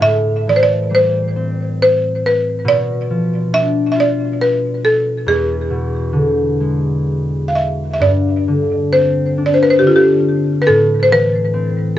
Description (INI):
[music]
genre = celtic folk, Celtic slow air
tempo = 68 BPM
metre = 3/4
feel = rubato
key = A minor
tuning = A4 = 435 Hz
[part]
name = buzzing marimba with hard mallets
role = melody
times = 0.0-12.0 s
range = F4 to F5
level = -14 LUFS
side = equal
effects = analog delay
[part]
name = concert harp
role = accompaniment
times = 0.0-12.0 s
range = E2 to F4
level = -16 LUFS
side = left 1 dB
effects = none
[sound]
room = moderate studio ambience, RT60 0.5 s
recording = cassette tape, nothing above 7.9 kHz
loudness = -13 LUFS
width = side -12 dB against mid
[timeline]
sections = 0.0-8.0 A section; 8.0-12.0 B section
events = none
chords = 0.0 Am7; 2.7 Bdim; 5.3 E7; 8.0 Gsus4; 10.7 Am